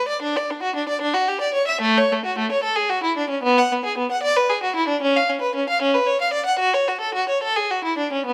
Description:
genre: classical, baroque-style suite movement for unaccompanied violin.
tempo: 75 BPM (dotted quarters).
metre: 12/8.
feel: rubato.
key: F# minor.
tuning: A4 = 440 Hz.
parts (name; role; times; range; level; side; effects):
warm violin; solo; 0.0-8.3 s; A3 to F#5; -21 LUFS; equal; none.
room: light reverb.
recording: close, detailed microphones.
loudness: -21 LUFS.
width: mono.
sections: 0.0-8.3 A section.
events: none.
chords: none.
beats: 0.20 0.99 | 1.82 2.63 3.43 4.23 | 5.02 5.82 6.61 7.42 | 8.27.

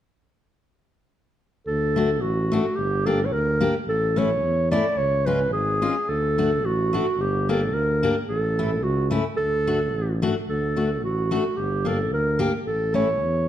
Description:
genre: alpine folk, alpine dance band.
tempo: 109 BPM.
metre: 2/4.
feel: swing 53% on 8ths.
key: D major.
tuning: A4 = 440 Hz.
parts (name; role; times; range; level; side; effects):
mellow clarinet; melody; 1.7-13.5 s; F#4 to D5; -24 LUFS; right 1 dB; none.
mellow tuba; bass; 1.7-13.5 s; G1 to E2; -26 LUFS; right 1 dB; none.
fingerpicked steel-string acoustic guitar; accompaniment; 2.0-13.1 s; G#3 to G4; -27 LUFS; left 4 dB; none.
room: moderate recital hall reverb, RT60 1.4 s.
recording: dark, warm production.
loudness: -20 LUFS.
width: side -11 dB against mid.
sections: 1.7-10.5 A section; 10.5-13.5 A section.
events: none.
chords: 1.7 D; 2.8 Gm; 3.9 A; 5.0 C#; 6.1 D; 7.2 Gm; 8.3 A; 9.4 D; 11.6 Gm; 12.7 A.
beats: | 1.67 2.23 | 2.79 3.33 | 3.88 4.43 | 4.98 5.53 | 6.08 6.63 | 7.18 7.73 | 8.28 8.82 | 9.37 9.92 | 10.47 11.02 | 11.57 12.11 | 12.66 13.21.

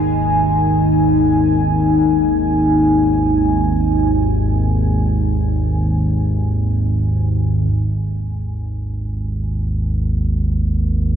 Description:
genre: dark ambient drone.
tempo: free time.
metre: none.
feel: none.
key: unclear.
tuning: A4 = 440 Hz.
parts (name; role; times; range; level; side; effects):
deep dark ambient pad; sustained chords; 0.0-7.7 s; Eb3 to Ab5; -17 LUFS; left 1 dB; chorus, built-in reverb.
analog drone; drone; 0.0-11.2 s; Ab1 to Eb2; -17 LUFS; right 1 dB; chorus.
room: wet huge ambient reverb, RT60 7.6 s.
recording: none.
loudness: -15 LUFS.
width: side -8 dB against mid.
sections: 0.0-7.7 A section; 7.7-11.2 B section.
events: none.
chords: 0.0 Ab5.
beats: free time.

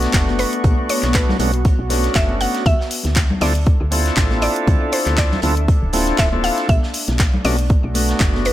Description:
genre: deep house.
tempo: 119 BPM.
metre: 4/4.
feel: swing 55% on 16ths.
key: B minor.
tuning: A4 = 440 Hz.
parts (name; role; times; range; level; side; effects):
mallet-like synth pluck; melody; 0.0-8.5 s; B4 to F#5; -25 LUFS; equal; chorus, dub echo.
bright tonewheel organ; stabs; 0.0-8.5 s; A3 to A4; -22 LUFS; equal; overdrive, slow rotary speaker, sidechain pumping.
woody FM bass; bass; 0.0-8.5 s; D1 to D2; -20 LUFS; equal; sidechain pumping.
big rock drum kit; drums; 0.0-8.5 s; hi-hat, snare drum; -33 LUFS; right 2 dB; high-pass filter on hats, high-pass filter on snare, high-pass filter on room.
deep house drum kit; drums; 0.0-8.5 s; handclaps, hi-hat; -24 LUFS; left 1 dB; none.
warbly tape-like pad; texture; 0.0-8.5 s; A3 to C#6; -28 LUFS; equal; chorus, built-in reverb, sidechain pumping.
electronic kick drum; drums; 0.1-8.3 s; none; -16 LUFS; equal; none.
congas; percussion; 0.3-8.4 s; none; -28 LUFS; left 2 dB; none.
room: studio ambience.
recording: none.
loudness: -15 LUFS.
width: side -13 dB against mid.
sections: 0.0-8.5 A section.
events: none.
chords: 0.0 Bm9; 2.7 Dm9; 6.7 Bm9.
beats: 0.14 | 0.64 1.15 1.65 2.15 | 2.66 3.16 3.67 4.17 | 4.67 5.18 5.68 6.19 | 6.69 7.20 7.70 8.21.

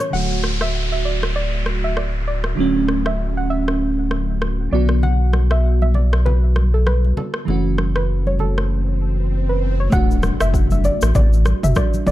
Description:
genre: afrobeats.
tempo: 98 BPM.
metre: 4/4.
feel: swing 58% on 16ths.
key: unclear.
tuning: A4 = 437 Hz.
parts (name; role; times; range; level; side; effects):
soft round pluck; melody; 0.0-12.1 s; A4 to F#5; -26 LUFS; equal; chorus, ping-pong delay.
crystalline FM electric piano; accompaniment; 0.0-12.1 s; C#3 to F#4; -24 LUFS; right 2 dB; chorus, phaser.
deep house drum kit; drums; 0.0-12.1 s; kick drum, rim click, shaker, toms; -22 LUFS; equal; none.
warm sub bass; bass; 0.1-12.1 s; D1 to B1; -18 LUFS; equal; none.
downlifter, swell and impact; sound effects; 0.1-12.1 s; none; -29 LUFS; equal; none.
congas; percussion; 5.0-12.1 s; none; -28 LUFS; left 2 dB; none.
room: digital ambience.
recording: dark, warm production.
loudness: -16 LUFS.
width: side -14 dB against mid.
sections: 0.1-9.9 A section; 9.9-12.1 B section.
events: swell 8.5-9.9; drums muted 8.7-9.9; impact 9.9-12.1.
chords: 0.1 D; 4.7 Bm; 7.5 F#m7; 9.9 D.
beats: | 0.13 0.74 1.35 1.97 | 2.58 3.19 3.80 4.41 | 5.03 5.64 6.25 6.86 | 7.48 8.09 8.70 9.31 | 9.93 10.54 11.15 11.76.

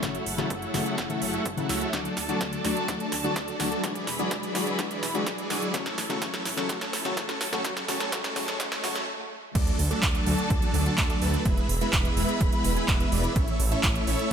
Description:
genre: EDM, festival progressive house.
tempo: 126 BPM.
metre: 4/4.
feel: straight.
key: unclear.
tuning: A4 = 440 Hz.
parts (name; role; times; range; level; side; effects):
felt-muted upright piano; accompaniment; 0.0-8.9 s; C#3 to F#4; -34 LUFS; left 6 dB; sidechain pumping, ping-pong delay.
warm studio string section; sustained chords; 0.0-14.3 s; D3 to B5; -34 LUFS; equal; sidechain pumping.
big supersaw lead; riff; 0.0-14.3 s; F#3 to G#5; -30 LUFS; equal; vintage 12-bit sampler grit, sidechain pumping, low-pass filter, ping-pong delay.
detuned saw bass; bass; 0.0-14.1 s; E1 to D2; -31 LUFS; right 1 dB; sidechain pumping.
big-room dance drum kit; drums; 0.0-14.3 s; crash cymbal, handclaps, hi-hat, snare drum; -31 LUFS; right 2 dB; overdrive, high-pass filter on hats, high-pass filter on snare, high-pass filter on cymbals, high-pass filter on room.
electronic kick drum; drums; 0.0-13.9 s; none; -28 LUFS; right 1 dB; overdrive, high-pass filter on kick, high-pass filter on room.
riser; sound effects; 5.3-9.1 s; none; -41 LUFS; right 2 dB; none.
room: light reverb.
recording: high-pass filter.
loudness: -24 LUFS.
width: side -8 dB against mid.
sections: 0.0-9.6 A section; 9.6-14.3 B section.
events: build-up 0.0-9.6; drum fill 0.0-9.1; filter sweep on supersaw synth 0.0-9.6; stop 9.1-9.6; drop 9.6-14.3.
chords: 0.0 F#m7; 1.9 D; 3.8 E; 5.7 A; 7.6 F#m7; 9.6 D; 11.5 E; 13.4 A.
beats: | 0.03 0.50 0.98 1.46 | 1.93 2.41 2.88 3.36 | 3.84 4.31 4.79 5.26 | 5.74 6.22 6.69 7.17 | 7.65 8.12 8.60 9.07 | 9.55 10.03 10.50 10.98 | 11.46 11.93 12.41 12.88 | 13.36 13.84 14.31.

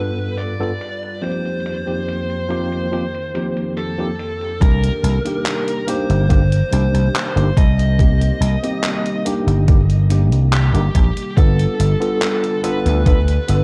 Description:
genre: vaporwave.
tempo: 71 BPM.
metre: 4/4.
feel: straight.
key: C dorian.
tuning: A4 = 440 Hz.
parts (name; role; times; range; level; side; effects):
high-gain lead guitar; melody; 0.0-13.6 s; G4 to Eb5; -28 LUFS; equal; distortion, tape echo.
tine electric piano; accompaniment; 0.0-13.6 s; G2 to A4; -26 LUFS; equal; overdrive, subtle chorus, tape echo.
warbly tape-like pad; sustained chords; 0.0-13.6 s; F2 to B4; -32 LUFS; equal; chorus, built-in reverb, phaser.
detuned 8-bit digital drum machine; drums; 0.2-13.6 s; handclaps, hi-hat; -29 LUFS; equal; low-pass filter on hats, low-pass filter on snare, low-pass filter on room.
vintage slap bass; bass; 4.6-13.6 s; G1 to D2; -17 LUFS; equal; none.
electronic kick drum; drums; 4.6-13.2 s; none; -16 LUFS; equal; none.
room: little or no reverb.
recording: dark, warm production, cassette tape.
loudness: -18 LUFS.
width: mono.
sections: 0.0-4.6 A section; 4.6-13.6 B section.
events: none.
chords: 0.0 G7; 1.2 F9sus4; 4.6 Cm7; 11.4 G7.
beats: 0.39 | 1.23 2.08 2.92 3.77 | 4.61 5.46 6.30 7.15 | 7.99 8.84 9.68 10.53 | 11.37 12.22 13.06.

